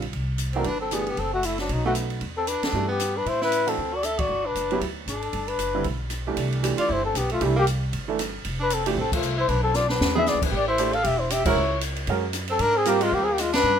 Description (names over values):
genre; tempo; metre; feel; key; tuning
jazz, small-group swing and bop; 231 BPM; 4/4; swing 58% on 8ths; G major, C major from 6.4 s; A4 = 440 Hz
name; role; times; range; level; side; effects
upright bass; bass; 0.0-13.8 s; E1 to A2; -29 LUFS; equal; none
open jazz drum kit; drums; 0.0-13.6 s; crash cymbal, hi-hat, kick drum, ride cymbal, rim click, snare drum, toms; -30 LUFS; equal; none
bright tenor saxophone; second line; 0.5-13.8 s; F#3 to A4; -30 LUFS; right 3 dB; none
mellow flugelhorn; melody; 0.6-13.8 s; D4 to F5; -24 LUFS; left 3 dB; none
clear upright piano; accompaniment; 0.6-13.2 s; C2 to C5; -28 LUFS; right 6 dB; none
room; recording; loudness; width
light reverb; minimal, uncompressed stereo recording; -22 LUFS; side -8 dB against mid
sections
0.0-6.4 A section; 6.4-13.8 B section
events
band accent 2.6, 4.2, 9.1, 11.4, 13.5; drum fill 9.7-10.3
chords
0.1 Cadd9; 1.2 F#m7b5; 1.7 B7; 2.2 Em7; 3.3 Asus2; 3.8 D5; 4.3 Gmaj7; 6.4 Cmaj9; 7.4 C69; 8.4 F; 9.5 Bm7b5; 10.0 E7; 10.5 Am7; 11.6 Dbm; 12.1 F#add9; 12.6 Abmaj9